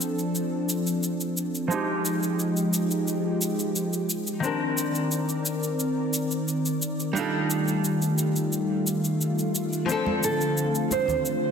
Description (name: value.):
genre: sunset chillout.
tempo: 88 BPM.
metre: 4/4.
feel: straight.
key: unclear.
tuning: A4 = 439 Hz.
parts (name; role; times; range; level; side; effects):
archtop guitar, miked and amplified; accompaniment; 0.0-11.5 s; Eb3 to Bb4; -30 LUFS; moving between left 5 dB and right 5 dB; auto-pan, low-pass filter, tape echo.
lush unison pad; sustained chords; 0.0-11.5 s; D3 to D5; -26 LUFS; equal; chorus, vintage 12-bit sampler grit.
cabasa; drums; 0.0-11.4 s; none; -32 LUFS; left 1 dB; soft clipping on snare.
congas; percussion; 10.1-11.2 s; none; -33 LUFS; right 3 dB; none.
nylon-string guitar; melody; 10.2-11.5 s; A4 to C5; -25 LUFS; right 4 dB; tape echo.
room: moderate lush hall reverb, RT60 2.0 s.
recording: dense, heavily limited modern master.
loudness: -24 LUFS.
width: side -6 dB against mid.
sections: 0.0-11.5 A section.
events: filter sweep on hollow-body jazz guitar 0.0-11.5.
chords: 0.0 Dm7; 1.7 Fm9; 4.4 Cm9; 7.2 F13; 9.9 Dm7.